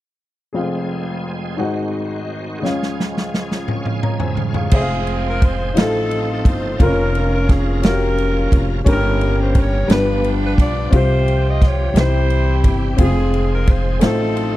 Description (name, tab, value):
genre	slow gospel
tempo	58 BPM (dotted quarters)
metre	6/8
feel	straight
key	F minor from 4.7 s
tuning	A4 = 440 Hz
part	warm upright piano	accompaniment	0.5-14.6 s	F1 to Bb5	-22 LUFS	left 3 dB	none
part	overdriven tonewheel organ	sustained chords	0.6-14.6 s	C3 to Ab5	-29 LUFS	right 3 dB	slow rotary speaker, chorus vibrato
part	swinging big-band drum kit	drums	2.7-14.5 s	crash cymbal, kick drum, ride cymbal, snare drum, toms	-18 LUFS	equal	none
part	warm saxophone section	melody	4.7-14.6 s	C4 to Eb5	-22 LUFS	right 1 dB	none
part	upright bass	bass	4.7-14.6 s	F1 to C2	-19 LUFS	equal	none
room	small room ambience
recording	dry, close 1970s-style studio recording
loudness	-15 LUFS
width	side -15 dB against mid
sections	0.6-4.7 A section; 4.7-14.6 B section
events	drum fill 2.6-4.7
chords	0.6 Fm; 1.6 Ab7; 2.6 Db; 4.7 Fm; 5.8 F7/A; 6.8 Bbm/F; 8.9 Gdim; 9.9 G7; 10.9 Csus4; 12.0 C; 13.0 Fm; 14.0 F7/A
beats	| 0.56 1.60 | 2.64 3.68 | 4.72 5.76 | 6.79 7.83 | 8.86 9.89 | 10.93 11.96 | 12.99 14.02